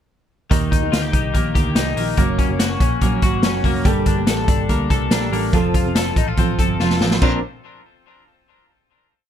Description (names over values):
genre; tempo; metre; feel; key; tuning
jangly indie pop; 143 BPM; 4/4; straight; Bb major; A4 = 441 Hz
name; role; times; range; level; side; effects
fingerpicked steel-string acoustic guitar; accompaniment; 0.5-7.4 s; Eb3 to D5; -24 LUFS; right 7 dB; none
twelve-string electric guitar; arpeggios; 0.5-7.4 s; Eb3 to Bb4; -22 LUFS; left 6 dB; wide subtle chorus
vintage muted picked electric bass; bass; 0.5-7.4 s; F1 to Eb2; -24 LUFS; equal; none
vintage drum kit; drums; 0.5-7.3 s; crash cymbal, hi-hat, kick drum, snare drum; -19 LUFS; equal; none
soft electric-piano-like synth keys; accompaniment; 3.8-7.4 s; Bb3 to Bb4; -27 LUFS; right 3 dB; chorus, tremolo
room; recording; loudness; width
light reverb; none; -16 LUFS; side -9 dB against mid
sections
0.5-7.2 pre-chorus; 7.2-8.9 final chord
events
drum fill 6.8-7.2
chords
0.5 Eb; 2.2 Gb; 3.9 Gmadd9; 5.5 F; 7.2 Bbadd9